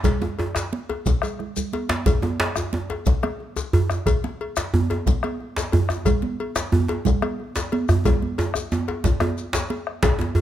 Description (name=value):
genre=west african traditional, West African drum ensemble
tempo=120 BPM (dotted quarters)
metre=12/8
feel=straight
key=none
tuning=none
part: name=bombo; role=percussion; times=0.0-10.2 s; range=none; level=-24 LUFS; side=equal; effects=none
part: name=congas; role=percussion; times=0.0-10.3 s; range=none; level=-28 LUFS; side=right 5 dB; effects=none
part: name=cowbell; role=percussion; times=0.0-10.4 s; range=none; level=-29 LUFS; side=left 5 dB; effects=none
part: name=djembe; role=percussion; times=0.0-10.4 s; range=none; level=-28 LUFS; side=left 5 dB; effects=none
part: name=shekere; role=percussion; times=0.0-10.2 s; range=none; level=-32 LUFS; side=left 5 dB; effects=none
part: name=djembe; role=percussion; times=0.1-10.4 s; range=none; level=-23 LUFS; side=right 2 dB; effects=none
room=light reverb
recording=close, detailed microphones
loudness=-21 LUFS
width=side -11 dB against mid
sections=0.0-10.0 A section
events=drum fill 1.2-2.1, 8.1-10.0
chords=none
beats=| 0.04 0.55 1.05 1.55 | 2.06 2.56 3.06 3.56 | 4.07 4.57 5.07 5.57 | 6.06 6.56 7.06 7.56 | 8.05 8.55 9.04 9.54 | 10.03